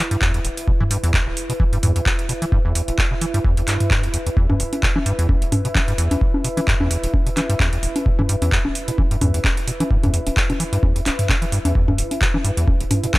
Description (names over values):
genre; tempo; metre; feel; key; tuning
acid house; 130 BPM; 4/4; swing 56% on 16ths; E minor pentatonic; A4 = 444 Hz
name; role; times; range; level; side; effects
acid bass, square; riff; 0.0-13.2 s; E1 to E3; -22 LUFS; equal; tube saturation, sidechain pumping
warbly tape-like pad; texture; 0.0-13.2 s; E4 to E5; -28 LUFS; right 1 dB; chorus, built-in reverb, sidechain pumping
booming analog drum machine; drums; 0.1-13.2 s; congas, handclaps, hi-hat, toms; -22 LUFS; equal; overdrive
electronic kick drum; drums; 0.2-13.2 s; none; -20 LUFS; equal; overdrive
room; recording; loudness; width
little or no reverb; dry, gritty hardware recording, transformer saturation; -17 LUFS; side -20 dB against mid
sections
0.0-13.2 A section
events
filter sweep on acid bass 0.0-13.2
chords
0.0 E5